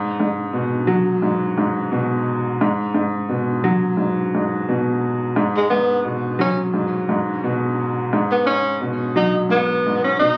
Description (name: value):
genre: hip hop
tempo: 87 BPM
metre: 4/4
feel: swing 59% on 16ths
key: G# minor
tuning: A4 = 437 Hz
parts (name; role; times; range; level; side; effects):
- warm upright piano; accompaniment; 0.0-10.4 s; G#2 to F#3; -21 LUFS; equal; high-pass filter, low-pass filter
- breathy tenor saxophone; melody; 5.6-10.4 s; G#3 to D#4; -21 LUFS; equal; high-pass filter, low-pass filter
room: moderate studio reverb, RT60 0.5 s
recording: recorded on a phone in the room, club reverb, compression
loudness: -20 LUFS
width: mono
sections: 0.0-10.4 A section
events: none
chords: 0.0 G#m7